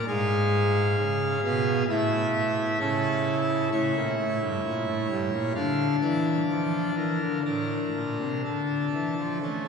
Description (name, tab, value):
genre	classical, chorale-style piece for pipe organ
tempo	61-66 BPM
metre	4/4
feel	rubato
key	D minor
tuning	A4 = 435 Hz
part	pipe organ, full organ	solo	0.0-9.7 s	G2 to E#5	-24 LUFS	equal	none
room	wet cathedral reverb, RT60 4.4 s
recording	heard from further back in the room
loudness	-24 LUFS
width	side -6 dB against mid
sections	0.0-9.7 A section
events	none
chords	0.1 G#m6; 1.9 A; 3.7 A7b9; 5.6 Dm; 7.5 Dm/A